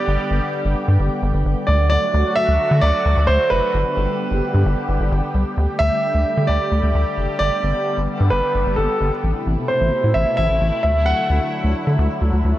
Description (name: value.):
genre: pop.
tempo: 131 BPM.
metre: 4/4.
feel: straight.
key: G major.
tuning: A4 = 440 Hz.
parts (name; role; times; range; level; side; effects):
warm concert grand piano; melody; 0.0-11.7 s; A4 to F#5; -20 LUFS; right 1 dB; shimmer reverb, tape echo.
sweeping resonant pad; sustained chords; 0.0-12.6 s; B2 to G4; -24 LUFS; left 1 dB; chorus, shimmer reverb.
rubbery square bass; bass; 0.1-12.5 s; F#1 to D3; -18 LUFS; equal; none.
room: moderate lush hall reverb, RT60 2.6 s.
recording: worn, warbling old tape, cassette tape, warbly pitch drift.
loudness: -16 LUFS.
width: side -14 dB against mid.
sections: 0.0-5.6 A section; 5.6-12.6 B section.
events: none.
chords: 0.0 G; 1.7 D; 3.7 G; 5.6 Dsus4; 7.4 G; 9.2 Amadd9; 10.8 Dadd9.